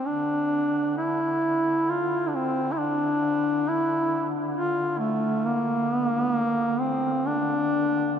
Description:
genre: caucasian folk, Caucasian lament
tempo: 66 BPM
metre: 3/4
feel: rubato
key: D minor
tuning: A4 = 440 Hz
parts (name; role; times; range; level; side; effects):
- breathy duduk; melody; 0.0-8.2 s; A3 to F4; -23 LUFS; equal; diffuse ambient delay
- warm duduk; drone; 0.0-8.2 s; D3; -35 LUFS; right 1 dB; none
room: wet huge ambient reverb, RT60 8.6 s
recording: dreamy mix soaked in reverb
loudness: -23 LUFS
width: side -8 dB against mid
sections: 0.0-8.2 A section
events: none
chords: none

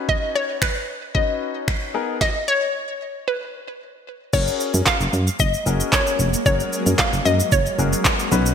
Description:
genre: dance-pop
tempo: 113 BPM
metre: 4/4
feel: straight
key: F# major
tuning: A4 = 441 Hz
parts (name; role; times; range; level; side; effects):
- clear concert grand piano; accompaniment; 0.0-8.5 s; B3 to B4; -27 LUFS; left 6 dB; wide subtle chorus, sidechain pumping
- hollow square pluck; melody; 0.1-8.3 s; B4 to E#5; -23 LUFS; left 1 dB; chorus, digital delay
- smooth R&B drum kit; drums; 0.1-8.5 s; crash cymbal, finger snaps, handclaps, kick drum, shaker, snare drum; -22 LUFS; equal; gated reverb
- shimmering ambient pad; sustained chords; 5.4-8.5 s; F#3 to A#3; -28 LUFS; right 1 dB; chorus, built-in reverb, phaser, sidechain pumping
- solid FM bass; bass; 4.3-8.5 s; E#1 to F#2; -20 LUFS; right 1 dB; sidechain pumping
room: moderate lush hall reverb, RT60 1.8 s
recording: bright 1980s-style digital production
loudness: -18 LUFS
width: side -7 dB against mid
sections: 0.0-4.3 A section; 4.3-8.5 B section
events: none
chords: 0.0 Badd9; 1.9 G#madd9; 4.3 F#add9

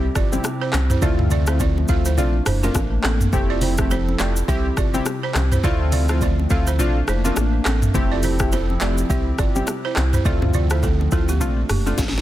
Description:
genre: afrobeats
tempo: 104 BPM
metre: 4/4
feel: swing 58% on 16ths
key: F major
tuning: A4 = 440 Hz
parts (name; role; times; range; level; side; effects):
- warm analog keys; accompaniment; 0.0-12.0 s; G3 to G4; -26 LUFS; left 2 dB; chorus
- hollow soft pad; sustained chords; 0.0-12.2 s; C3 to A4; -28 LUFS; left 1 dB; chorus
- sub bass with octave; bass; 0.0-12.2 s; F1 to D2; -21 LUFS; equal; none
- balafon; riff; 0.2-12.0 s; A3 to F5; -28 LUFS; right 8 dB; digital delay
- afro-pop drum kit; drums; 0.2-12.2 s; handclaps, hi-hat, kick drum, rim click, shaker, snare drum, toms; -22 LUFS; equal; none
- bongos and congas; percussion; 0.3-12.1 s; none; -30 LUFS; left 2 dB; none
room: little or no reverb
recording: dense, heavily limited modern master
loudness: -17 LUFS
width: side -14 dB against mid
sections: 0.0-12.2 A section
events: drum fill 12.0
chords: 0.0 C; 1.0 Dm7; 2.2 Bbmaj7; 3.3 Fmaj7; 4.5 C; 5.6 Dm7; 6.8 Bbmaj7; 7.9 Fmaj7; 9.1 C; 10.3 Dm7; 11.4 Bbmaj7

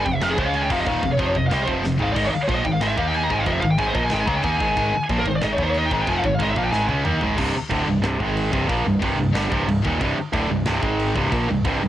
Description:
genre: heavy metal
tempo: 184 BPM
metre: 4/4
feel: straight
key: C phrygian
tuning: A4 = 445 Hz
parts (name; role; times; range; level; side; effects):
- high-gain lead guitar; melody; 0.0-6.8 s; Ab4 to Bb5; -24 LUFS; left 1 dB; distortion
- high-gain distorted guitar; riff; 0.0-11.9 s; C2 to Eb4; -26 LUFS; left 6 dB; distortion, cassette tape
- tight distorted guitar; riff; 0.0-11.9 s; C2 to Eb4; -23 LUFS; right 4 dB; distortion, cassette tape
- growling picked electric bass; bass; 0.0-11.9 s; C1 to Eb2; -27 LUFS; equal; overdrive
- tight metal drum kit; drums; 0.1-11.7 s; china cymbal, crash cymbal, kick drum, snare drum, toms; -29 LUFS; equal; cassette tape
room: small room ambience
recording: home recording on cassette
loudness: -19 LUFS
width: side -12 dB against mid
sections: 0.0-7.4 A section; 7.4-11.9 B section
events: lead electric guitar solo 0.0-7.4; drum fill 1.8-2.2, 6.7-7.4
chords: 0.4 Db5; 0.7 F5; 2.2 Ab5; 3.0 Eb5; 3.3 Ab5; 5.6 Eb5; 5.9 Ab5; 7.4 C5; 8.2 Ab5; 8.5 Cm; 10.8 Ab5; 11.1 C5

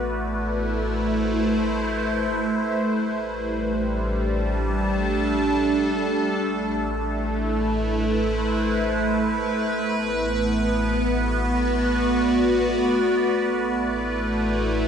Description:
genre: ambient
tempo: free time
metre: none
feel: none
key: A dorian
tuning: A4 = 436 Hz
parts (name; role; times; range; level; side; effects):
- evolving wavetable pad; sustained chords; 0.0-14.9 s; G3 to A5; -22 LUFS; right 1 dB; phaser, built-in reverb
- deep rumbling drone; bass; 0.0-14.9 s; A1; -30 LUFS; left 1 dB; built-in reverb, phaser
- organ-like drone; drone; 0.0-14.9 s; A3; -30 LUFS; equal; ensemble chorus, built-in reverb, phaser
room: wet plate reverb, RT60 2.3 s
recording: dreamy mix soaked in reverb, nothing above 10.8 kHz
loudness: -21 LUFS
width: side -7 dB against mid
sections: 0.0-14.9 A section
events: none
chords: 0.0 Amadd9; 2.7 Gsus2/A; 6.2 Amadd9; 9.7 Bm7/A; 13.2 Asus2

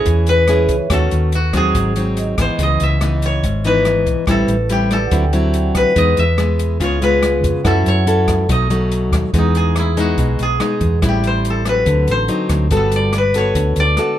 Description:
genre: bossa nova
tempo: 142 BPM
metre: 4/4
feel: straight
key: E major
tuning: A4 = 442 Hz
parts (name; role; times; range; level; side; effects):
- koto; melody; 0.0-14.2 s; D#4 to E5; -19 LUFS; left 2 dB; none
- nylon-string guitar; accompaniment; 0.0-14.2 s; G#2 to A4; -19 LUFS; left 1 dB; none
- vibraphone with soft mallets; accompaniment; 0.0-8.5 s; G#4 to G5; -26 LUFS; right 6 dB; none
- hollow-body short-scale fingered electric bass; bass; 0.0-14.0 s; G1 to F#2; -18 LUFS; equal; none
- open jazz drum kit; drums; 0.1-14.1 s; hi-hat, kick drum, rim click; -23 LUFS; equal; none
room: light reverb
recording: minimal, uncompressed stereo recording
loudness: -13 LUFS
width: side -12 dB against mid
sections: 0.0-9.3 A section; 9.3-14.2 B section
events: koto solo 9.3-14.2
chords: 0.0 Amaj7 (rootless); 0.9 D#m7b5; 1.7 G#7; 2.6 C#m9; 4.3 Am7; 5.1 D9; 6.0 Emaj7; 6.8 C#7; 7.7 F#m7; 8.5 B7; 9.3 Emaj7; 11.0 Am7; 11.9 D7b9; 12.7 Gmaj9

